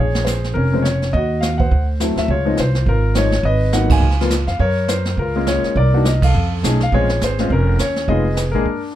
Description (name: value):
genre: jazz piano trio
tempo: 208 BPM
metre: 4/4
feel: swing 60% on 8ths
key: Bb minor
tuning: A4 = 440 Hz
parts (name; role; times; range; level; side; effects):
- warm concert grand piano; melody; 0.0-8.9 s; Db3 to Ab5; -19 LUFS; left 2 dB; none
- upright bass; bass; 0.0-8.6 s; F1 to Gb2; -18 LUFS; right 1 dB; none
- jazz brush drum kit; drums; 0.1-9.0 s; brushed snare drum, hi-hat, kick drum, ride cymbal, snare drum; -21 LUFS; right 3 dB; none
room: little or no reverb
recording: dark, warm production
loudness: -15 LUFS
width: side -12 dB against mid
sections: 0.0-9.0 A section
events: band accent 3.9, 6.2; break 8.7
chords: 0.0 Bbm7; 1.1 Ebm; 1.7 D9; 2.3 Dbmaj9; 3.4 Abm7; 4.0 Db; 4.6 Gbmaj7; 5.8 Cm7; 6.3 F7alt; 6.9 Bbm7; 8.1 Fm7b5